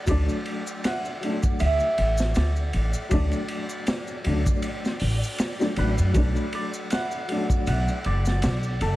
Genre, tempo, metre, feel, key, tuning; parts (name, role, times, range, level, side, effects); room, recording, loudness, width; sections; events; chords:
trip hop; 79 BPM; 4/4; swing 56% on 16ths; A4 = 439 Hz
santur; melody; 0.0-9.0 s; A4 to F#5; -30 LUFS; right 2 dB; dub echo
dark upright piano; accompaniment; 0.0-9.0 s; F#3 to D4; -30 LUFS; left 1 dB; tremolo, low-pass filter
flickering grainy texture; texture; 0.0-9.0 s; D5; -40 LUFS; right 1 dB; built-in reverb
upright bass; bass; 0.1-9.0 s; F#1 to F#2; -23 LUFS; equal
crunchy breakbeat drum kit; drums; 0.1-9.0 s; hi-hat, kick drum, ride cymbal, snare drum; -28 LUFS; equal
maracas; percussion; 0.1-8.8 s; -41 LUFS; left 2 dB
light reverb; vinyl crackle; -22 LUFS; side -16 dB against mid
0.0-9.0 A section
filter sweep on upright piano 0.0-9.0
0.1 D; 6.2 Bm7